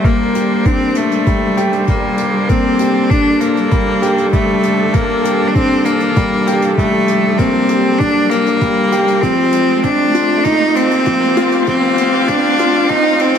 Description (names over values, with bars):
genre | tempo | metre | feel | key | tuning
piano and strings electronica | 98 BPM | 4/4 | straight | G minor | A4 = 440 Hz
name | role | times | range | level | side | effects
bright cello | melody | 0.0-13.4 s | A3 to Eb4 | -15 LUFS | equal | none
warm string quartet | sustained chords | 0.0-13.4 s | G3 to F5 | -22 LUFS | equal | sidechain pumping
felt-muted upright piano | riff | 0.0-13.4 s | F3 to G4 | -16 LUFS | left 2 dB | tape echo
warm sub bass | bass | 0.0-13.4 s | none | barely audible | none | none
electronic kick drum | drums | 0.0-13.0 s | none | -16 LUFS | equal | none
hi-hat | drums | 0.0-13.4 s | none | -35 LUFS | left 5 dB | none
riser | sound effects | 1.1-13.4 s | none | -25 LUFS | right 2 dB | none
room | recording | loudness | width
moderate echo chamber reverb, RT60 1.9 s, studio reverb | high-pass filter | -11 LUFS | side -8 dB against mid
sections
0.0-13.4 A section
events
build-up 0.0-13.4; filter sweep 0.0-13.4; riser 1.1-13.4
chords
0.0 Gmadd9; 9.2 F7/A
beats
0.04 0.66 1.27 | 1.88 2.49 3.10 3.72 | 4.33 4.94 5.55 6.17 | 6.78 7.39 8.00 8.61 | 9.23 9.84 10.45 11.06 | 11.68 12.29 12.90